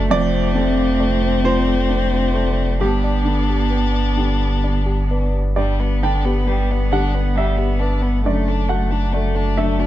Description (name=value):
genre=neoclassical piano and strings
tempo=45 BPM (dotted quarters)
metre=6/8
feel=rubato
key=G major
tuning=A4 = 439 Hz
part: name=rich violin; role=melody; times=0.0-9.9 s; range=G3 to D4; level=-24 LUFS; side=left 6 dB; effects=none
part: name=rich cello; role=second line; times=0.0-9.9 s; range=A3 to B3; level=-26 LUFS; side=right 6 dB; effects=tape echo
part: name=warm baby grand piano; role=accompaniment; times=0.0-9.9 s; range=F2 to G5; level=-23 LUFS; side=right 2 dB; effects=none
part: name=hand-pumped harmonium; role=sustained chords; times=0.0-9.9 s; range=A3 to D5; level=-33 LUFS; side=right 2 dB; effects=none
part: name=pure sine sub bass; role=bass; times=0.0-9.9 s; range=F1 to G1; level=-20 LUFS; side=equal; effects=none
part: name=harp-like synth pluck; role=arpeggios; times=0.1-9.9 s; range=D4 to G5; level=-29 LUFS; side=left 2 dB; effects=chorus, phaser
room=little or no reverb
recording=close, detailed microphones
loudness=-16 LUFS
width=side -13 dB against mid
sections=0.0-9.9 A section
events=none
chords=0.1 F6; 2.8 G; 8.3 D/F#